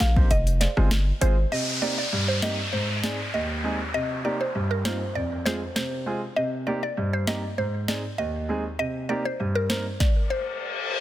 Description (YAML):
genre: dancehall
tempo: 99 BPM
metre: 4/4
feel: straight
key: C minor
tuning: A4 = 440 Hz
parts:
  - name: mallet-like synth pluck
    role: melody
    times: 0.0-10.4 s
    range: Bb4 to F5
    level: -29 LUFS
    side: equal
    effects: chorus, phaser, tape echo
  - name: warm grand piano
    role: accompaniment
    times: 0.0-9.9 s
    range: Eb2 to C5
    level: -28 LUFS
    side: right 1 dB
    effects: none
  - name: hard-hitting 808-style bass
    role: bass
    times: 0.0-1.5 s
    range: F1 to Bb1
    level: -21 LUFS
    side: equal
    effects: none
  - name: afro-pop drum kit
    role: drums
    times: 0.0-10.2 s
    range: hi-hat, kick drum, rim click, snare drum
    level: -25 LUFS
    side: equal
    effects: none
  - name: downlifter and reverse cymbal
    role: sound effects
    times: 1.5-11.0 s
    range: none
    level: -30 LUFS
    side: left 2 dB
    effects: none
room: little or no reverb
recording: dense, heavily limited modern master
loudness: -23 LUFS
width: side -13 dB against mid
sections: 0.0-1.5 A section; 1.5-11.0 B section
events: break 0.3-1.5; reverse cymbal 10.3-11.0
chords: 0.3 Fm; 1.5 Cm7; 2.7 Ab; 3.9 Cm7; 5.2 Fm; 6.4 Cm7; 7.6 Ab; 8.8 Cm7; 10.0 N.C.